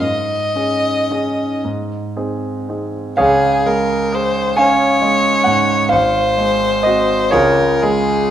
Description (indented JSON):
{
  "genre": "classical, romantic duo for violin and grand piano",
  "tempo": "37-46 BPM (dotted quarters)",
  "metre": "6/8",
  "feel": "rubato",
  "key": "Db major",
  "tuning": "A4 = 440 Hz",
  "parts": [
    { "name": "rich violin", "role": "melody", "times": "0.0-8.3 s", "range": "Ab4 to Eb5", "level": "-16 LUFS", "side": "left 2 dB", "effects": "none" },
    { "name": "clear concert grand piano", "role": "accompaniment", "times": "0.0-8.3 s", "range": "Ab1 to Ab5", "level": "-16 LUFS", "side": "right 2 dB", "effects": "none" }
  ],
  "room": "wet recital hall reverb, RT60 1.5 s",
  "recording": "none",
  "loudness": "-13 LUFS",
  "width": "side -10 dB against mid",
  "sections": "0.0-3.2 A section; 3.2-8.3 A section",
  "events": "none",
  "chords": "0.0 Absus4; 1.6 Ab; 3.2 Db; 5.9 Ab7; 7.3 Db"
}